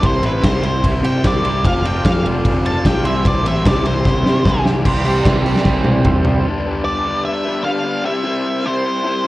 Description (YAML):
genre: indie rock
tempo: 150 BPM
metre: 4/4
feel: straight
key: unclear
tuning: A4 = 441 Hz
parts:
  - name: octave-fuzz lead guitar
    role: melody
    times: 0.0-9.3 s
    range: B4 to A5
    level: -21 LUFS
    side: equal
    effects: distortion, slapback echo
  - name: glockenspiel with rubber mallets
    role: second line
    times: 0.0-6.4 s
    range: C6 to D6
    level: -29 LUFS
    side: right 2 dB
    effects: none
  - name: brassy analog pad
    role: sustained chords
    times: 0.0-9.3 s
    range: G4 to C6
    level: -29 LUFS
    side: right 1 dB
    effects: chorus
  - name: crunchy overdriven guitar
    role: riff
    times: 0.0-6.5 s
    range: C3 to A4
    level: -24 LUFS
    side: right 3 dB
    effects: ensemble chorus
  - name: raw garage guitar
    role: riff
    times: 0.0-9.3 s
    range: G2 to G4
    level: -22 LUFS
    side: left 2 dB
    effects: overdrive
  - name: growling picked electric bass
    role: bass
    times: 0.0-6.4 s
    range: F1 to C3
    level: -20 LUFS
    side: equal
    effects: overdrive
  - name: big rock drum kit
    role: drums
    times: 0.0-6.3 s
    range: crash cymbal, hi-hat, kick drum, ride cymbal, snare drum, toms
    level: -17 LUFS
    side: equal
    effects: none
room: light reverb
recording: worn, warbling old tape, cassette tape, warbly pitch drift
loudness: -14 LUFS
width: side -17 dB against mid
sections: 0.0-4.9 A section; 4.9-6.5 B section; 6.5-9.3 C section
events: lead electric guitar solo 0.0-4.9; drum fill 4.1-4.9, 5.7-6.5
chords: 0.0 C; 1.6 F6; 3.1 C; 6.5 Gadd9; 8.0 C